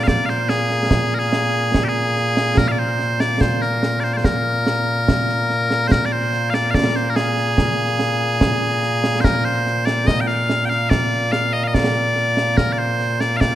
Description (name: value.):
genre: scottish traditional, Scottish pipe music.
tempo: 72 BPM.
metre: 2/4.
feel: straight.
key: Bb mixolydian.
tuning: A4 = 438 Hz.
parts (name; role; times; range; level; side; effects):
loud bright bagpipes; melody; 0.0-13.6 s; Bb2 to G5; -18 LUFS; equal; none.
concert snare drum and concert bass drum; drums; 0.1-13.6 s; none; -21 LUFS; right 1 dB; none.
room: moderate concert hall reverb, RT60 2.2 s.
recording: none.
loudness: -16 LUFS.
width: side -13 dB against mid.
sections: 0.0-5.9 A section; 5.9-13.6 A section.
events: none.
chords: none.